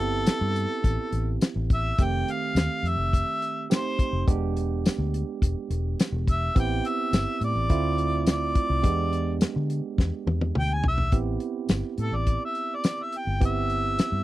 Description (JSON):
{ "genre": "straight-eighth soul blues", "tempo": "105 BPM", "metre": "4/4", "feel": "straight", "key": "A minor", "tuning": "A4 = 440 Hz", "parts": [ { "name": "warm harmonica", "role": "melody", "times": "0.0-14.2 s", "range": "A4 to G#5", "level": "-28 LUFS", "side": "left 1 dB", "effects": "overdrive" }, { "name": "barky tine electric piano", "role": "accompaniment", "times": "0.0-14.2 s", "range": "Eb3 to G4", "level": "-31 LUFS", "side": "right 8 dB", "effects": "none" }, { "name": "vintage muted fingered electric bass", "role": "bass", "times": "0.0-14.2 s", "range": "E1 to D3", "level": "-27 LUFS", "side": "left 1 dB", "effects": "none" }, { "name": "warm soul drum kit", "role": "drums", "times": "0.3-14.1 s", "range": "hi-hat, kick drum, snare drum, tambourine, toms", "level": "-22 LUFS", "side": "left 1 dB", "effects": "none" } ], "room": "little or no reverb", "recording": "dry, close 1970s-style studio recording", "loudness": "-23 LUFS", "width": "side -16 dB against mid", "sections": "0.0-11.1 A section; 11.1-14.2 B section", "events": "harmonica solo 0.0-11.1; drum fill 10.0-11.1; tine electric piano fill 14.0", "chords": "0.0 Am7; 2.0 F7; 4.3 E7#9; 6.6 Am7; 7.7 Dm7; 8.8 E7#9; 11.1 Am7" }